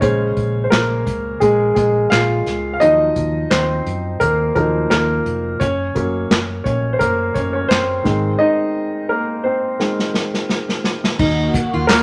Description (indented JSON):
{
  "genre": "piano-driven pop",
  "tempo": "86 BPM",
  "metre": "4/4",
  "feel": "swing 56% on 16ths",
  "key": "unclear",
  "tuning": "A4 = 439 Hz",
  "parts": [
    { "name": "clear baby grand piano", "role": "accompaniment", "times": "0.0-12.0 s", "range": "Db3 to F5", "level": "-19 LUFS", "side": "equal", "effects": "none" },
    { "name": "vintage muted fingered electric bass", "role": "bass", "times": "0.0-12.0 s", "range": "F1 to Gb2", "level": "-25 LUFS", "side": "equal", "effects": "none" },
    { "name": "unplugged drum kit", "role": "drums", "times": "0.0-12.0 s", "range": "crash cymbal, handclaps, hi-hat, kick drum, snare drum", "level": "-22 LUFS", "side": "equal", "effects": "none" },
    { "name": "warm analog pad", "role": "sustained chords", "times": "11.2-12.0 s", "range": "Eb3 to Gb4", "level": "-24 LUFS", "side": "equal", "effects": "chorus" },
    { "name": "fingerpicked steel-string acoustic guitar", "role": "riff", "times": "11.2-12.0 s", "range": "Eb4 to Gb4", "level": "-22 LUFS", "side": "equal", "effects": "none" },
    { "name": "group handclap", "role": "percussion", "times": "11.9-12.0 s", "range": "none", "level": "-26 LUFS", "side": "equal", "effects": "none" }
  ],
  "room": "moderate studio reverb, RT60 0.8 s",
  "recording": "none",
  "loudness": "-18 LUFS",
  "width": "mono",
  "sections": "0.0-11.2 A section",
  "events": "grand piano solo 0.0-11.2; drum fill 9.8-11.2",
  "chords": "0.0 Bbm7; 2.8 Ebmadd9; 5.6 Gb; 8.1 Ab; 11.2 Ebm",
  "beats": "| 0.02 0.72 1.42 2.12 | 2.82 3.52 4.21 4.91 | 5.61 6.31 7.01 7.71 | 8.40 9.10 9.80 10.50 | 11.19 11.89"
}